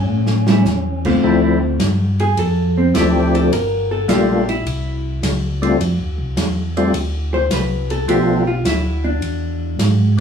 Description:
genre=soul jazz organ trio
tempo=105 BPM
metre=4/4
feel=swing 69% on 8ths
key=unclear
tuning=A4 = 439 Hz
part: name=percussive tonewheel organ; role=melody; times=0.0-10.2 s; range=F3 to G4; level=-17 LUFS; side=left 1 dB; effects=slow rotary speaker, overdrive, chorus vibrato
part: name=mellow tonewheel organ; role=bass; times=0.0-10.2 s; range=G1 to A2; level=-19 LUFS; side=equal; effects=slow rotary speaker
part: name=open jazz drum kit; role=drums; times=0.3-10.0 s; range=crash cymbal, hi-hat, kick drum, ride cymbal, snare drum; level=-24 LUFS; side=equal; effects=none
part: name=vintage hollow-body jazz guitar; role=accompaniment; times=0.5-9.7 s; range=D3 to C5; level=-19 LUFS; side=equal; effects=none
room=wet club reverb, RT60 0.6 s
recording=heard from further back in the room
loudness=-15 LUFS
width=side -7 dB against mid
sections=0.0-1.2 A section; 1.2-10.2 B section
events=drum fill 0.1-0.7; hollow-body jazz guitar solo 1.2-10.2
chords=0.1 A7; 1.2 Dm7; 3.5 Gm7; 4.7 C; 5.8 F5; 8.1 Bm7b5; 9.2 E7

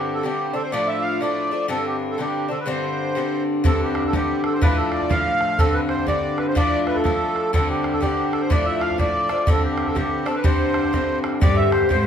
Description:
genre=celtic folk, Celtic polka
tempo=123 BPM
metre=2/4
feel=swing 62% on 8ths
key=unclear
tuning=A4 = 441 Hz
part: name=accordion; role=melody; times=0.0-12.0 s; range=G4 to F5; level=-24 LUFS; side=right 2 dB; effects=light tremolo tuning
part: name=Irish bouzouki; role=accompaniment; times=0.0-12.1 s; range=G2 to G4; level=-22 LUFS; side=left 2 dB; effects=none
part: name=bodhran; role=percussion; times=3.6-12.0 s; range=none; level=-23 LUFS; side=right 1 dB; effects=none
part: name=breathy bright jazz flute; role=second line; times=11.4-12.1 s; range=B4 to E5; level=-26 LUFS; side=left 3 dB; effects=none
part: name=warm cello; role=bass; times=11.4-12.1 s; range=G2 to Ab2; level=-22 LUFS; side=equal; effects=none
room=moderate large studio reverb, RT60 0.8 s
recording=band playing live in one room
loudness=-19 LUFS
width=side -8 dB against mid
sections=0.0-3.6 A section; 3.6-11.4 A section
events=none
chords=0.0 Gsus4; 0.7 Dm; 1.7 Gsus4; 4.6 Dm; 5.6 Gsus4; 6.6 Dm; 7.5 Gsus4; 8.5 Dm; 9.5 Gsus4

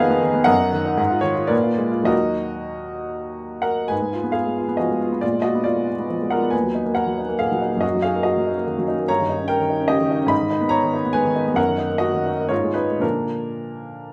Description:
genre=classical, romantic character piece for solo piano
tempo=94-150 BPM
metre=3/4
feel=rubato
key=Eb minor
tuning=A4 = 440 Hz
part: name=clear upright piano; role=solo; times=0.0-14.1 s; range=Eb2 to Cb6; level=-21 LUFS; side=equal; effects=none
room=moderate recital hall reverb, RT60 1.4 s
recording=none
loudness=-21 LUFS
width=mono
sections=0.0-3.9 A section; 3.9-14.1 B section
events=none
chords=0.0 Fm7b5; 0.5 Ebm/Gb; 1.0 Ab13sus4; 1.5 Bb7b9; 2.1 Ebm; 3.9 Fdim/Ab; 5.2 Bb7b9; 6.5 Ebm; 7.8 Ebm/Gb; 9.1 Eb7/G; 10.3 Abm; 11.6 Ebm/Gb; 12.5 Abm; 13.0 Bb

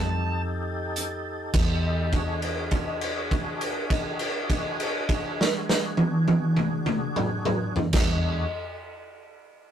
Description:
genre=slow blues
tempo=34 BPM (dotted quarters)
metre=12/8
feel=straight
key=E mixolydian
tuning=A4 = 441 Hz
part: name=tonewheel organ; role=sustained chords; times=0.0-8.5 s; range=D4 to A4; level=-33 LUFS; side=equal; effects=overdrive, chorus vibrato, slow rotary speaker
part: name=vintage muted fingered electric bass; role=bass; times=0.0-8.4 s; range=E2 to F2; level=-29 LUFS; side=equal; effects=none
part: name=raw garage drum kit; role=drums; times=1.0-8.2 s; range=crash cymbal, hi-hat, kick drum, snare drum, toms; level=-24 LUFS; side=right 1 dB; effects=none
room=light reverb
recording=rough rehearsal-room recording, tube saturation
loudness=-24 LUFS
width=side -9 dB against mid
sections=0.0-1.5 A section; 1.5-8.6 B section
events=slowing down 0.0-1.5; held note 1.5-7.9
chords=0.0 F9; 1.5 E9

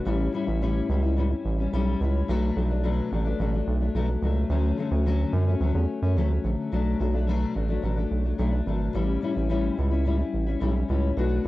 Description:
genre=indie pop, bedroom pop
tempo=108 BPM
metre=4/4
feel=straight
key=unclear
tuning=A4 = 439 Hz
part: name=fingerpicked steel-string acoustic guitar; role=accompaniment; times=0.0-11.5 s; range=A2 to F#4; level=-27 LUFS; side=left 4 dB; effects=lush chorus, warbly pitch drift, cassette tape
part: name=round analog bass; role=bass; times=0.1-11.5 s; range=G#1 to F#2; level=-24 LUFS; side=right 1 dB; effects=none
room=light reverb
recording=home recording on cassette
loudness=-23 LUFS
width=side -17 dB against mid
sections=0.0-11.5 A section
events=none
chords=0.1 A7; 2.3 Bm7; 4.5 Dmaj7; 6.7 Bm7; 9.0 A7

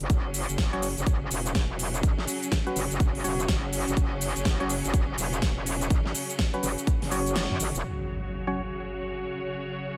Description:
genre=bass house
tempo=124 BPM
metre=4/4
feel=swing 62% on 16ths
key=unclear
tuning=A4 = 445 Hz
part: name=metallic wobble bass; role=bass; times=0.0-7.8 s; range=E1 to F#2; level=-33 LUFS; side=equal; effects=chorus, overdrive, sidechain pumping
part: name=big-room dance drum kit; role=drums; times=0.0-7.8 s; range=hi-hat, shaker, snare drum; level=-34 LUFS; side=equal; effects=studio reverb
part: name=bright studio string section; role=sustained chords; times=0.1-10.0 s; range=C#3 to C#5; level=-37 LUFS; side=equal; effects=sidechain pumping, low-pass filter
part: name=electronic kick drum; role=drums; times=0.1-7.0 s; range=none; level=-28 LUFS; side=equal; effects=studio reverb
part: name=percussive organ stab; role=stabs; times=0.7-8.6 s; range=F#3 to C#5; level=-35 LUFS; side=equal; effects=chorus, sidechain pumping, delay
part: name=impact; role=sound effects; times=7.8-9.8 s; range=none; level=-40 LUFS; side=equal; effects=none
room=light reverb, digital ambience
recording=none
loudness=-28 LUFS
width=mono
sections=0.0-7.8 A section; 7.8-10.0 B section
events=kick drops out 7.4-7.8; band accent 7.4; impact 7.8-9.8; filter sweep on string section 7.8-10.0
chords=0.0 F#5

